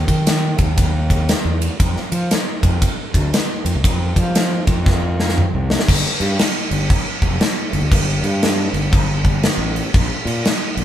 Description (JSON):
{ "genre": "blues rock power trio and southern rock", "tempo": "118 BPM", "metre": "4/4", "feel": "swing 63% on 8ths", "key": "G minor", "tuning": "A4 = 441 Hz", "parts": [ { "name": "fuzz fingered electric bass", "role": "bass", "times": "0.0-10.8 s", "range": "F1 to F3", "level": "-19 LUFS", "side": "equal", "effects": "overdrive" }, { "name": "big rock drum kit", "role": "drums", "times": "0.1-10.8 s", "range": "crash cymbal, kick drum, ride cymbal, snare drum, toms", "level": "-17 LUFS", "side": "equal", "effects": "none" } ], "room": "light reverb", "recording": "band playing live in one room", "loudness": "-15 LUFS", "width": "side -11 dB against mid", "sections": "0.0-5.9 A section; 5.9-10.8 B section", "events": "drum fill 4.9-5.9", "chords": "none" }